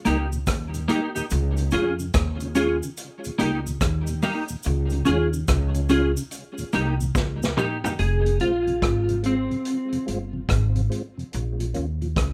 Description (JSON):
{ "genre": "roots reggae", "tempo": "72 BPM", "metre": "4/4", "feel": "swing 65% on 16ths", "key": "F minor", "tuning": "A4 = 440 Hz", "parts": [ { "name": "mellow tonewheel organ", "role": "accompaniment", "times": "0.1-12.1 s", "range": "Eb2 to F4", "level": "-36 LUFS", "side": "equal", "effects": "chorus vibrato, slow rotary speaker, tape echo" }, { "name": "semi-hollow electric guitar", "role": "accompaniment", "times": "0.1-10.0 s", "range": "Bb3 to Ab4", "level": "-26 LUFS", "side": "equal", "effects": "ensemble chorus, tape echo" }, { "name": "upright bass", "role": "bass", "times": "0.1-12.3 s", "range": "F1 to F2", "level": "-27 LUFS", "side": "equal", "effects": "none" }, { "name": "vintage drum kit", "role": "drums", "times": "0.1-12.3 s", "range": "hi-hat, kick drum, rim click, snare drum, toms", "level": "-29 LUFS", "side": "equal", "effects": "none" }, { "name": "cabasa", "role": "percussion", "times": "0.1-8.0 s", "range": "none", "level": "-42 LUFS", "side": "equal", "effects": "none" } ], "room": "moderate studio reverb, RT60 0.6 s", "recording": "rough home demo mix", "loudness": "-24 LUFS", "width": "mono", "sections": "0.0-8.0 A section; 8.0-12.3 B section", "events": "drum fill 7.1-8.0; clean electric guitar solo 8.0-12.3", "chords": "0.0 Eb; 1.3 Db; 3.0 Eb; 4.6 Db; 6.3 Eb; 8.0 Fm; 11.3 Bbm" }